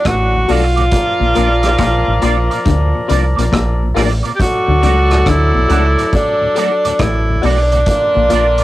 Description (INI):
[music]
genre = roots reggae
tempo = 69 BPM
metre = 4/4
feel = swing 65% on 16ths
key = unclear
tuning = A4 = 440 Hz
[part]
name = clear tenor saxophone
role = melody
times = 0.0-8.6 s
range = D4 to G4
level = -15 LUFS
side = right 1 dB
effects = cassette tape, tape echo
[part]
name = warm horn section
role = second line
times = 0.0-8.6 s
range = A2 to D5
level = -20 LUFS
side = left 1 dB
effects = cassette tape, tape echo
[part]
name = clean electric guitar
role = riff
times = 0.1-8.6 s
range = A2 to D3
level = -22 LUFS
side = left 7 dB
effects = tremolo, cassette tape
[part]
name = deep dub fingered electric bass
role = bass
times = 0.1-8.6 s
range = A1 to D2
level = -15 LUFS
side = equal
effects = none
[part]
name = vintage drum kit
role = drums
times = 0.1-8.6 s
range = hi-hat, kick drum, rim click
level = -20 LUFS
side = equal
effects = cassette tape
[part]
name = mellow tonewheel organ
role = accompaniment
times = 0.3-8.6 s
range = D2 to D4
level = -24 LUFS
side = left 6 dB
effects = slow rotary speaker, cassette tape
[part]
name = electric guitar with an envelope filter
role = accompaniment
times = 0.5-8.6 s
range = F4 to D5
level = -24 LUFS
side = right 8 dB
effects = ensemble chorus, cassette tape, tape echo
[part]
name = filtered dub chord stab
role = stabs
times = 0.5-8.5 s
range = F4 to D5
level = -23 LUFS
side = left 6 dB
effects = phaser, cassette tape
[sound]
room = light reverb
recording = home recording on cassette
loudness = -11 LUFS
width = side -16 dB against mid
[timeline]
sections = 0.0-8.6 A section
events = none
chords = 0.0 D; 0.9 Bb; 4.4 D; 7.9 Bb